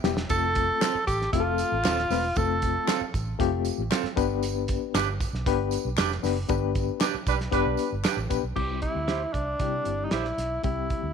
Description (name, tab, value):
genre	uptempo 1960s-style soul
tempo	116 BPM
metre	4/4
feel	straight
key	C major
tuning	A4 = 440 Hz
part	bright reed electric piano	accompaniment	0.0-11.1 s	G3 to B4	-29 LUFS	left 15 dB	overdrive, fast tremolo
part	vintage muted fingered electric bass	bass	0.0-11.1 s	Eb1 to C3	-31 LUFS	right 1 dB	none
part	cloth-damped thuddy drum kit	drums	0.0-11.0 s	crash cymbal, hi-hat, kick drum, snare drum	-30 LUFS	right 1 dB	none
part	tambourine and handclaps	percussion	0.0-8.4 s	none	-38 LUFS	left 2 dB	none
part	warm tenor saxophone	melody	0.3-3.1, 8.6-11.1 s	D4 to A4	-27 LUFS	right 1 dB	slapback echo
part	electric guitar through a small old amp	stabs	0.8-10.3 s	C4 to C5	-32 LUFS	right 15 dB	none
part	warm horn section	second line	7.3-7.9 s	G3 to B4	-29 LUFS	right 14 dB	none
room	light reverb, small room ambience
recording	1960s-style stereo with parts hard left and right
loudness	-24 LUFS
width	side -7 dB against mid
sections	0.0-8.6 A section; 8.6-11.1 B section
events	drum fill 0.0; band accent 6.5-8.6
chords	0.3 F; 4.2 G; 8.6 C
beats	| 0.30 0.81 1.33 1.85 | 2.36 2.88 3.40 3.91 | 4.43 4.94 5.46 5.97 | 6.49 7.01 7.53 8.04 | 8.56 9.08 9.60 10.12 | 10.64